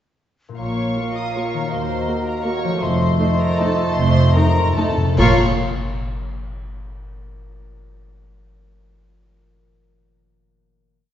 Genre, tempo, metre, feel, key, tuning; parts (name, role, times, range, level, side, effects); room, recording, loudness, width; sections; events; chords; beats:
classical, orchestral ballroom waltz; 138-174 BPM; 3/4; rubato; Bb minor; A4 = 439 Hz
concert harp; arpeggios; 0.5-6.3 s; Bb2 to F5; -26 LUFS; left 3 dB
dark symphonic violin section; melody; 0.6-5.4 s; A5 to Eb6; -27 LUFS; left 3 dB
clear clarinet; second line; 0.6-5.4 s; F4 to Gb4; -30 LUFS; right 1 dB
mellow cor anglais; second line; 0.6-5.4 s; Bb4 to C5; -30 LUFS; right 2 dB
mellow silver concert flute; second line; 0.6-5.4 s; Eb5 to F5; -30 LUFS; right 2 dB
warm studio violin section; second line; 0.6-5.4 s; A4 to Eb5; -28 LUFS; equal
warm bassoon; accompaniment; 0.6-5.3 s; A3 to Bb3; -28 LUFS; right 2 dB
dark symphonic double bass section; bass; 0.6-5.4 s; F1 to Eb2; -23 LUFS; right 2 dB
rich symphonic cello section; bass; 0.6-5.4 s; Eb2 to Bb2; -25 LUFS; right 1 dB
dark symphonic viola section; accompaniment; 1.0-5.4 s; A3 to Gb4; -28 LUFS; right 2 dB
mellow French horn section; sustained chords; 1.0-5.4 s; A3 to Gb4; -27 LUFS; left 2 dB
cymbal swell, clash cymbals and concert bass drum; percussion; 2.8-6.0 s; -27 LUFS; left 1 dB
timpani; percussion; 2.8-5.4 s; F2 to Bb2; -23 LUFS; left 1 dB
wet scoring stage reverb, RT60 1.7 s; heard from further back in the room, nothing above 7.7 kHz; -16 LUFS; side -10 dB against mid
0.6-5.2 A section; 5.2-6.4 final chord
slowing down 2.3-5.2; timpani fill 2.8-5.2; band accent 5.2-5.6
0.6 Bbm; 1.7 Ebm; 2.8 F7; 5.2 Bb5
| 0.60 0.97 1.36 | 1.72 2.08 2.46 | 2.83 3.20 3.60 | 3.98 4.36 4.78 | 5.19 5.59 6.02